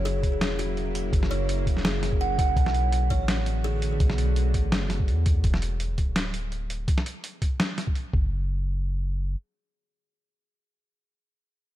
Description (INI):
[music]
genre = half-time drum and bass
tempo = 167 BPM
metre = 4/4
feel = swing 54% on 16ths, half-time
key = unclear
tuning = A4 = 440 Hz
[part]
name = bowed-like drone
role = sustained chords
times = 0.0-5.4 s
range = C#3 to F#4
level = -34 LUFS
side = equal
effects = built-in reverb, sidechain pumping
[part]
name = long sustained 808-style bass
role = bass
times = 0.0-9.4 s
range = D1 to E2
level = -26 LUFS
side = equal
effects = none
[part]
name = kalimba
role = arpeggios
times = 0.1-4.2 s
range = F#4 to F#5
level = -32 LUFS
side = right 3 dB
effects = digital delay
[part]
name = boom bap sampler-style drum kit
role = drums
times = 0.1-8.0 s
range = hi-hat, snare drum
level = -30 LUFS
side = equal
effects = none
[part]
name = electronic kick drum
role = drums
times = 0.2-8.2 s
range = none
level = -25 LUFS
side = equal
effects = none
[sound]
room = light reverb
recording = dark, warm production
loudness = -23 LUFS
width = side -14 dB against mid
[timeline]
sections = 0.0-8.3 A section; 8.3-11.2 B section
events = drop 0.0-8.3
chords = 0.0 F#7; 2.6 Bm7; 5.4 Dsus2; 8.1 N.C.